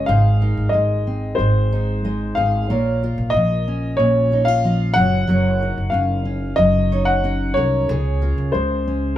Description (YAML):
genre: acoustic pop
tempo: 92 BPM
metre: 4/4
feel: straight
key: unclear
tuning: A4 = 440 Hz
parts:
  - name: warm upright piano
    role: melody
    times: 0.0-9.1 s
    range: C5 to Gb5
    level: -21 LUFS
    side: left 2 dB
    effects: none
  - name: fingerpicked steel-string acoustic guitar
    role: accompaniment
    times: 0.0-9.2 s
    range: Ab2 to Bb4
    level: -22 LUFS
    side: equal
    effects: none
  - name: upright bass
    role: bass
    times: 0.0-9.2 s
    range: Gb1 to Db2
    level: -21 LUFS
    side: equal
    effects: none
  - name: nylon-string guitar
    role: arpeggios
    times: 0.1-8.8 s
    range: Bb4 to Eb5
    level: -28 LUFS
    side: right 6 dB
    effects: none
room: moderate large studio reverb, RT60 1.0 s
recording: band playing live in one room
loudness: -16 LUFS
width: side -12 dB against mid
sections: 0.0-9.2 A section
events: none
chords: 0.1 Ab; 2.7 Bbm; 5.0 Gb6; 7.9 Db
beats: | 0.10 0.75 1.40 2.06 | 2.71 3.36 4.01 4.66 | 5.30 5.95 6.60 7.25 | 7.90 8.55